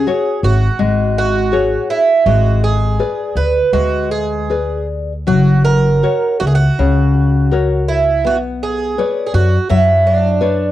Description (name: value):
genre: fado-style ballad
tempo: 82 BPM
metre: 4/4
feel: rubato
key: unclear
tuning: A4 = 442 Hz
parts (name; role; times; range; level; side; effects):
- picked twelve-string acoustic guitar; melody; 0.0-10.7 s; D4 to B4; -16 LUFS; right 5 dB; cassette tape
- nylon-string guitar; accompaniment; 0.0-10.7 s; C#3 to D5; -18 LUFS; left 6 dB; cassette tape
- upright bass; bass; 0.0-10.7 s; F#1 to F#2; -15 LUFS; equal; none
room: light reverb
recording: home recording on cassette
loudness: -12 LUFS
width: side -13 dB against mid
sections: 0.0-10.7 A section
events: none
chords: 0.0 C#sus4; 2.3 G#dim; 5.3 F#; 8.2 Bmadd9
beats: 0.07 0.79 1.52 | 2.26 2.99 3.73 4.50 | 5.27 6.03 6.79 7.52 | 8.24 8.97 9.69 10.41